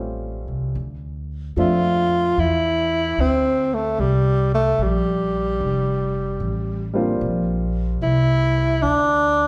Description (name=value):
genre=jazz ballad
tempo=74 BPM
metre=4/4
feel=swing 67% on 8ths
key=D minor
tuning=A4 = 440 Hz
part: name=warm grand piano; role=accompaniment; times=0.0-9.5 s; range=F3 to E5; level=-29 LUFS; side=equal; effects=none
part: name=upright bass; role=bass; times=0.0-9.5 s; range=F1 to F2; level=-25 LUFS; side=equal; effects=none
part: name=breathy tenor saxophone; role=melody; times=1.6-9.5 s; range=G3 to F4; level=-22 LUFS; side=equal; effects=none
room=wet recital hall reverb, RT60 1.4 s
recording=recorded in a church or concert hall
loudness=-21 LUFS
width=mono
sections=0.7-9.5 A section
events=none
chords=0.0 A7alt; 0.7 Dm9; 4.0 C5; 5.6 Fadd9; 7.2 Bb6